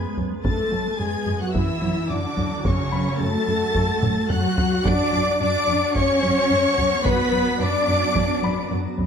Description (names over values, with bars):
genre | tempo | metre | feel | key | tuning
cinematic, hybrid orchestral and electronic film score | 109 BPM | 4/4 | straight | F# minor | A4 = 440 Hz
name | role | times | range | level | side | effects
warm symphonic violin section | melody | 0.0-8.7 s | C#6 to D7 | -30 LUFS | left 1 dB | none
warm symphonic violin section | second line | 0.0-8.7 s | C#5 to D6 | -30 LUFS | left 2 dB | none
warm symphonic viola section | accompaniment | 0.0-8.7 s | C#4 to D5 | -27 LUFS | right 1 dB | none
clear French horn section | sustained chords | 0.0-8.7 s | C#4 to D5 | -27 LUFS | left 5 dB | none
granular cloud pad | sustained chords | 0.0-9.1 s | F#3 to F#5 | -32 LUFS | equal | built-in reverb
rubbery square bass | riff | 0.0-9.1 s | F#2 to F#3 | -28 LUFS | left 2 dB | none
dark symphonic cello section | bass | 0.0-8.7 s | C#3 to D4 | -26 LUFS | right 1 dB | none
warm baby grand piano | texture | 0.0-4.9, 8.4-9.1 s | B5 to C#6 | -36 LUFS | left 3 dB | digital delay
warm studio double bass section | bass | 0.2-9.1 s | F#2 | -29 LUFS | right 4 dB | none
solo taiko drums | drums | 0.2-9.1 s | none | -28 LUFS | equal | none
room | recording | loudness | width
moderate scoring stage reverb, RT60 1.8 s | dark, warm production | -19 LUFS | side -7 dB against mid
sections
0.0-9.1 A section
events
drum fill 4.0-4.9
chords
0.5 F#m; 4.9 Bm/F#